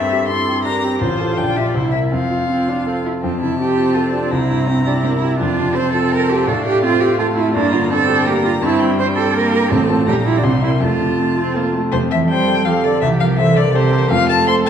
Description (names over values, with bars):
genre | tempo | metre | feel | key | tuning
quick classical-period movement for piano quartet | 166 BPM | 3/4 | straight | F major | A4 = 438 Hz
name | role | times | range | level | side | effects
rich violin | melody | 0.0-14.7 s | C5 to C6 | -22 LUFS | left 5 dB | none
rich cello | second line | 0.0-14.7 s | C3 to C5 | -19 LUFS | right 4 dB | none
bright concert grand piano | accompaniment | 0.0-14.7 s | A1 to C5 | -18 LUFS | left 1 dB | none
clear viola | accompaniment | 0.0-14.7 s | G3 to C5 | -22 LUFS | right 2 dB | none
room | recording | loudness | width
wet recital hall reverb, RT60 1.6 s | none | -14 LUFS | side -8 dB against mid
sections
0.0-3.2 A section; 3.2-11.9 B section; 11.9-14.7 B section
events
none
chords
0.0 C7/G; 1.0 F/A; 1.4 Gm7/Bb; 1.7 C7; 2.1 F; 4.3 C7; 5.4 F; 6.5 F/A; 7.5 Gm; 8.6 C7/G; 9.7 F/A; 10.1 Gm7/Bb; 10.4 C7; 10.8 F; 13.0 C5; 14.1 F